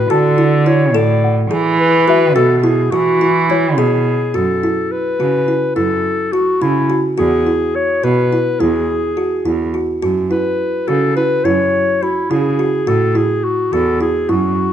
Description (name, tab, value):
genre	contemporary instrumental, chamber music in an uneven meter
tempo	211 BPM (eighths)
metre	5/8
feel	straight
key	F# minor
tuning	A4 = 441 Hz
part	warm clarinet	melody	0.0-14.7 s	E4 to D5	-17 LUFS	left 3 dB	none
part	small celesta	texture	0.0-4.6 s	C#5 to A5	-23 LUFS	left 9 dB	none
part	kalimba	arpeggios	0.1-14.6 s	E4 to A4	-17 LUFS	right 2 dB	none
part	rich cello	bass	0.1-14.5 s	E2 to E3	-17 LUFS	right 3 dB	none
room	light reverb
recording	dark, warm production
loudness	-13 LUFS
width	side -10 dB against mid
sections	0.0-4.3 A section; 4.3-14.7 B section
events	none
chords	0.0 Dadd9; 1.5 Eadd9; 4.3 F#m7; 7.2 E; 10.0 F#5; 12.9 A5